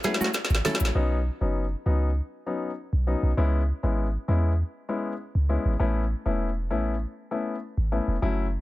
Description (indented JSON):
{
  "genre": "afrobeats",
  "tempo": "99 BPM",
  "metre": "4/4",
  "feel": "straight",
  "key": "unclear",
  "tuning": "A4 = 440 Hz",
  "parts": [
    { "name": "warm concert grand piano", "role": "accompaniment", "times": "0.0-8.5 s", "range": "F#3 to E4", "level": "-29 LUFS", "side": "left 3 dB", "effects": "none" },
    { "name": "afro-pop drum kit", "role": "drums", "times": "0.0-1.0 s", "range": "hi-hat, shaker, snare drum", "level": "-28 LUFS", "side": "equal", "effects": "none" },
    { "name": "congas", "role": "percussion", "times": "0.0-0.8 s", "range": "none", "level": "-34 LUFS", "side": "right 3 dB", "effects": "none" },
    { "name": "direct-recorded clean electric guitar", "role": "riff", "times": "0.1-0.8 s", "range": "A3 to A4", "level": "-31 LUFS", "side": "right 4 dB", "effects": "digital delay" },
    { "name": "clean 808-style bass", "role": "bass", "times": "0.5-8.6 s", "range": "E1 to E2", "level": "-24 LUFS", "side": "equal", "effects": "none" }
  ],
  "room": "digital ambience",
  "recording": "none",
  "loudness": "-24 LUFS",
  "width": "side -17 dB against mid",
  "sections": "1.0-8.6 A section",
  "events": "drum fill 0.0-1.0",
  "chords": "0.0 F#m7; 1.0 Badd9; 3.4 C#m7; 5.8 Aadd9"
}